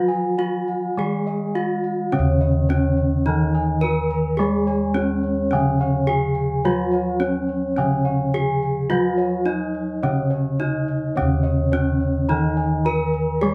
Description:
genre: gamelan.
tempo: 106 BPM.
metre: 4/4.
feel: straight.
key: unclear.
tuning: A4 = 444 Hz.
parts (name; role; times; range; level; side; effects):
gamelan-type bronze metallophone; melody; 0.0-13.5 s; Db4-45c to Bb4+25c; -27 LUFS; equal; none.
gamelan-type bronze metallophone; accompaniment; 0.0-13.5 s; Db3-45c to Ab3-35c; -25 LUFS; equal; none.
gamelan-type bossed gongs; arpeggios; 0.0-13.5 s; Db5-45c to Bb5+25c; -32 LUFS; equal; none.
gamelan-type bronze metallophone; arpeggios; 0.0-13.5 s; Db5-45c to Bb5+25c; -32 LUFS; equal; none.
gamelan-type bossed gongs; bass; 0.0-13.5 s; Eb2 to Ab4-35c; -28 LUFS; equal; none.
room: wet studio ambience, RT60 0.5 s.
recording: band playing live in one room.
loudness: -21 LUFS.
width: mono.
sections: 0.0-2.1 A section; 2.1-13.5 B section.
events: none.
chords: none.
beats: 0.38 0.97 1.56 | 2.13 2.69 3.26 3.82 | 4.39 4.95 5.52 6.08 | 6.65 7.21 7.78 8.34 | 8.91 9.47 10.04 10.60 | 11.17 11.73 12.30 12.86 | 13.43.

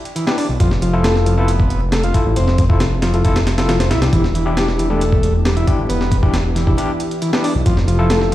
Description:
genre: breakbeat, breaks.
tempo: 136 BPM.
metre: 4/4.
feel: straight.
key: E phrygian.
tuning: A4 = 440 Hz.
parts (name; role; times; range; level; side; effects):
breakbeat sampler-style drum kit; drums; 0.1-8.3 s; hi-hat, kick drum, snare drum; -18 LUFS; equal; studio reverb.
combo organ; riff; 0.2-8.3 s; E3 to F4; -21 LUFS; equal; vintage 12-bit sampler grit, digital delay.
overdriven tine electric piano; stabs; 0.3-8.3 s; D4 to A4; -23 LUFS; left 3 dB; fast tremolo, vintage 12-bit sampler grit, digital delay.
detuned saw bass; bass; 0.5-8.3 s; E1 to C2; -17 LUFS; equal; none.
warbly tape-like pad; sustained chords; 5.0-8.3 s; C3 to E5; -25 LUFS; equal; chorus, built-in reverb, sidechain pumping.
room: light reverb, digital ambience.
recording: played on a big sound system in a bare room, large studio reverb, vinyl crackle.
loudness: -14 LUFS.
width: side -14 dB against mid.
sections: 0.0-8.3 A section.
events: none.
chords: 0.0 Em7; 0.6 Fmaj7; 4.1 Em7; 7.7 Fmaj7.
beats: 0.16 | 0.60 1.04 1.48 1.92 | 2.37 2.81 3.25 3.69 | 4.13 4.57 5.01 5.45 | 5.89 6.34 6.78 7.22 | 7.66 8.10.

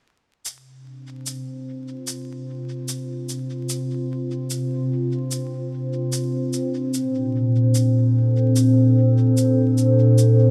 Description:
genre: ambient dub.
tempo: 74 BPM.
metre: 4/4.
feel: swing 57% on 16ths.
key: unclear.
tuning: A4 = 439 Hz.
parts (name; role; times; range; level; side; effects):
warbly tape-like pad; sustained chords; 0.5-10.5 s; Bb2 to C5; -21 LUFS; equal; chorus, built-in reverb.
cabasa; drums; 0.5-10.4 s; none; -33 LUFS; equal; overdrive.
room: wet cathedral reverb, RT60 6.1 s.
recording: dreamy mix soaked in reverb, vinyl crackle.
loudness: -20 LUFS.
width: mono.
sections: 0.5-10.5 A section.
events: filter sweep on ambient pad 0.5-10.5.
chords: 0.5 Csus24; 6.9 Bbmaj7.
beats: | 0.46 1.27 2.08 2.89 | 3.70 4.51 5.32 6.13 | 6.94 7.75 8.56 9.37 | 10.19.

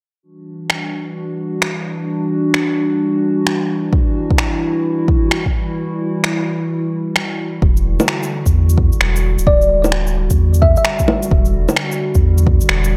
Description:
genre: future garage.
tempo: 130 BPM.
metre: 4/4.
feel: swing 64% on 16ths.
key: E minor.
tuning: A4 = 440 Hz.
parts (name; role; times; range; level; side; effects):
warbly tape-like pad; sustained chords; 0.5-13.0 s; D3 to F#4; -22 LUFS; equal; chorus, built-in reverb, sidechain pumping.
electronic finger snaps, shaker and bongos; drums; 0.7-12.9 s; none; -22 LUFS; equal; none.
electronic kick drum; drums; 3.9-12.6 s; none; -18 LUFS; equal; none.
warm sub bass; bass; 7.6-13.0 s; D1 to E2; -17 LUFS; equal; sidechain pumping.
thumb-piano-like synth pluck; melody; 9.5-10.8 s; D5 to E5; -20 LUFS; equal; chorus, delay.
room: moderate lush hall reverb, RT60 1.9 s.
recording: none.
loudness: -16 LUFS.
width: mono.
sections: 0.2-7.6 A section; 7.6-13.0 B section.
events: break 5.8-7.6.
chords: 0.2 Em9.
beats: | 0.24 0.70 1.16 1.62 | 2.08 2.55 3.01 3.47 | 3.93 4.39 4.85 5.32 | 5.78 6.24 6.70 7.16 | 7.62 8.08 8.55 9.01 | 9.47 9.93 10.39 10.85 | 11.31 11.78 12.24 12.70.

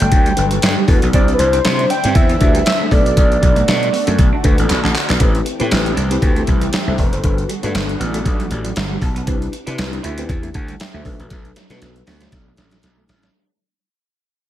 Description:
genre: early-eighties boogie funk.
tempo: 118 BPM.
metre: 4/4.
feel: swing 56% on 16ths.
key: unclear.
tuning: A4 = 440 Hz.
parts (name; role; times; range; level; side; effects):
warm velvety synth lead; melody; 0.0-4.0 s; B4 to G5; -18 LUFS; equal; chorus, slapback echo.
lush unison pad; sustained chords; 0.0-9.3 s; D3 to G4; -27 LUFS; equal; chorus, phaser.
semi-hollow electric guitar; riff; 0.0-13.3 s; F#3 to E4; -26 LUFS; right 5 dB; lush chorus, slapback echo.
gritty slap bass; bass; 0.0-13.3 s; E1 to C3; -19 LUFS; equal; overdrive.
detuned 8-bit digital drum machine; drums; 0.0-13.3 s; handclaps, hi-hat, kick drum, snare drum; -17 LUFS; equal; none.
tine electric piano; accompaniment; 0.4-12.9 s; F#3 to B5; -25 LUFS; left 4 dB; ensemble chorus.
room: light reverb, digital ambience.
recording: none.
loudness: -13 LUFS.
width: side -12 dB against mid.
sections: 0.0-5.2 A section; 5.2-13.3 B section.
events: drum fill 4.7-5.2, 11.3-13.3; fade-out 5.2-13.3; tine electric piano fill 8.3-9.3.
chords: 0.0 Gmaj7; 1.1 Cmaj9; 2.9 Bm7; 5.2 Am7; 7.2 Gmaj7; 9.3 Cmaj9; 11.1 Bm7.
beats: 0.12 0.63 | 1.14 1.65 2.15 2.66 | 3.17 3.68 4.19 4.70 | 5.21 5.71 6.22 6.73 | 7.24 7.75 8.26 8.76 | 9.27 9.78 10.29 10.80 | 11.31 11.81 12.32 12.83.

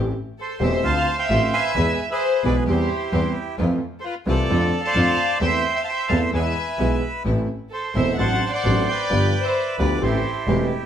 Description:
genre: tango.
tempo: 131 BPM.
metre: 4/4.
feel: rubato.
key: A minor.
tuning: A4 = 439 Hz.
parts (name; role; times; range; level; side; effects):
warm concert grand piano; accompaniment; 0.0-10.7 s; E1 to A4; -24 LUFS; equal; none.
bright studio string section; stabs; 0.0-10.7 s; F#3 to G#4; -35 LUFS; left 1 dB; none.
clear double bass; bass; 0.0-10.7 s; E1 to F2; -23 LUFS; equal; none.
bandoneon; melody; 0.4-10.9 s; E4 to A5; -24 LUFS; right 2 dB; none.
warm studio violin section; second line; 0.4-10.7 s; F4 to F#5; -26 LUFS; left 2 dB; none.
room: moderate stone room reverb, RT60 1.0 s.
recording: band playing live in one room.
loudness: -19 LUFS.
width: side -9 dB against mid.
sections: 0.0-10.9 A section.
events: none.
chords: 0.0 Am7; 0.8 Dm7; 1.8 E; 2.7 C/E; 3.6 Fmaj7; 4.5 Dm7/F; 5.4 Am/E; 6.3 E; 7.3 Am; 8.2 D7/A; 9.1 G7; 10.0 Am7.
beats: 0.38 0.84 1.30 | 1.76 2.21 2.67 3.13 | 3.58 4.04 4.50 4.95 | 5.41 5.87 6.33 6.79 | 7.26 7.72 8.19 8.65 | 9.11 9.57 10.03 10.48.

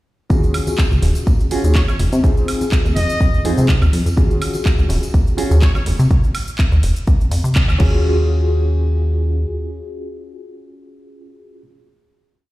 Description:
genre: filtered disco house.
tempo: 124 BPM.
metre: 4/4.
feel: swing 54% on 16ths.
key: Eb dorian.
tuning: A4 = 440 Hz.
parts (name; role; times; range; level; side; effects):
bright reed electric piano; accompaniment; 0.3-11.6 s; C4 to Ab4; -24 LUFS; equal; overdrive, fast tremolo, phaser, sidechain pumping.
plucky analog bass; bass; 0.3-9.5 s; Eb1 to C3; -16 LUFS; equal; tube saturation, sidechain pumping.
electronic kick drum; drums; 0.3-7.9 s; none; -15 LUFS; equal; small room ambience.
house drum kit; drums; 0.3-7.9 s; crash cymbal, handclaps, hi-hat, shaker, woodblock; -27 LUFS; right 1 dB; sidechain pumping on perc, small room ambience, sidechain pumping on hats, sidechain pumping on cymbals.
congas and tambourine; percussion; 0.3-6.1 s; none; -28 LUFS; right 1 dB; sidechain pumping on perc.
brilliant trumpet section; melody; 1.8-5.8 s; Db5 to Eb5; -26 LUFS; left 1 dB; sidechain pumping, ping-pong delay.
room: digital ambience.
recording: played on a big sound system in a bare room, stone room reverb.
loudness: -14 LUFS.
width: side -18 dB against mid.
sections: 0.3-8.0 drop; 8.0-11.9 final hit.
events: drop 0.3-8.0; band accent 7.6.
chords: 0.3 Ebm11; 2.0 Fm7; 4.2 Ebm11; 5.9 F5; 7.8 Ebm11.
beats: | 0.30 0.79 1.27 1.75 | 2.24 2.72 3.20 3.69 | 4.17 4.66 5.14 5.62 | 6.11 6.59 7.08 7.56 | 8.04 8.53 9.01 9.49 | 9.98 10.46 10.95 11.43.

